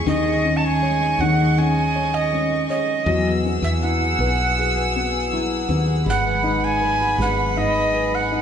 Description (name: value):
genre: pop ballad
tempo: 80 BPM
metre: 4/4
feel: straight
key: unclear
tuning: A4 = 439 Hz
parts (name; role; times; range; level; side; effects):
- felt-muted upright piano; accompaniment; 0.0-8.4 s; D#3 to C#5; -24 LUFS; left 4 dB; none
- dark studio string section; sustained chords; 0.0-8.4 s; G#4 to E6; -27 LUFS; left 1 dB; none
- picked steel-string acoustic guitar; arpeggios; 0.0-8.4 s; E2 to G#4; -29 LUFS; right 3 dB; none
- woody fretless electric bass; bass; 0.0-8.4 s; G#1 to E2; -23 LUFS; equal; none
- breathy alto recorder; melody; 0.1-8.4 s; D#5 to A5; -22 LUFS; right 2 dB; none
room: wet large studio reverb, RT60 1.1 s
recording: band playing live in one room, nothing above 10.4 kHz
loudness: -18 LUFS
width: side -8 dB against mid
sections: 0.0-8.4 A section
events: none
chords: 0.1 G#sus4/D#; 3.1 Eadd9; 6.1 G#m7